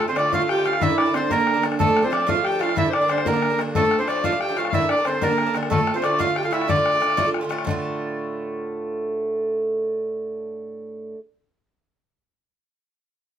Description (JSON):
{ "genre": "celtic folk, Celtic jig", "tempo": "123 BPM (dotted quarters)", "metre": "6/8", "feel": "straight", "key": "D minor", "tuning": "A4 = 440 Hz", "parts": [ { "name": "accordion", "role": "melody", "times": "0.0-7.3 s", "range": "A4 to G5", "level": "-22 LUFS", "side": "right 2 dB", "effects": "none" }, { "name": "baroque flute", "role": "second line", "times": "0.0-7.3 s", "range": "A4 to G5", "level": "-29 LUFS", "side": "left 4 dB", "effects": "none" }, { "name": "dark viola", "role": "second line", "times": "0.0-7.3 s", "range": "A3 to G4", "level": "-26 LUFS", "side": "right 3 dB", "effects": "none" }, { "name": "Irish bouzouki", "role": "accompaniment", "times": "0.0-11.2 s", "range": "G2 to F4", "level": "-26 LUFS", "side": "right 2 dB", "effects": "none" }, { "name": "bodhran", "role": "percussion", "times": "0.0-7.8 s", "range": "none", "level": "-27 LUFS", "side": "left 7 dB", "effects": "none" } ], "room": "light reverb", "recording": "minimal, uncompressed stereo recording", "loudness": "-19 LUFS", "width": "side -9 dB against mid", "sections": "0.0-7.7 A section; 7.7-9.6 B section", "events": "none", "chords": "0.0 Dm; 0.8 Gm; 1.8 Dm; 2.8 Gm; 3.8 Dm; 4.7 Gm; 5.7 Dm" }